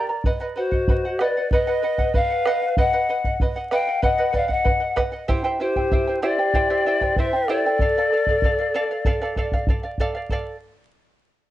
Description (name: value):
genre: andean folk, Andean ensemble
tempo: 96 BPM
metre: 4/4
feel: straight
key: unclear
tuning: A4 = 439 Hz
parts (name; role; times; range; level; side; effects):
- reedy pan flute; melody; 0.0-9.7 s; C5 to G5; -23 LUFS; left 2 dB; tape echo
- mellow large quena; second line; 0.0-9.7 s; F#4 to F5; -26 LUFS; left 2 dB; plate reverb
- charango; accompaniment; 0.0-10.6 s; E4 to Bb5; -25 LUFS; right 3 dB; plate reverb
- bombo; percussion; 0.2-10.6 s; none; -23 LUFS; equal; none
room: moderate studio reverb, RT60 0.5 s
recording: vinyl crackle, nothing above 11.0 kHz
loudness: -19 LUFS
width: side -14 dB against mid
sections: 0.0-10.3 A section; 10.3-11.5 B section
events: none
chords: 0.3 B; 5.3 C; 7.8 Dm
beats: | 0.25 0.88 1.51 2.15 | 2.77 3.40 4.03 4.66 | 5.29 5.92 6.55 7.17 | 7.80 8.43 9.05 9.68 | 10.30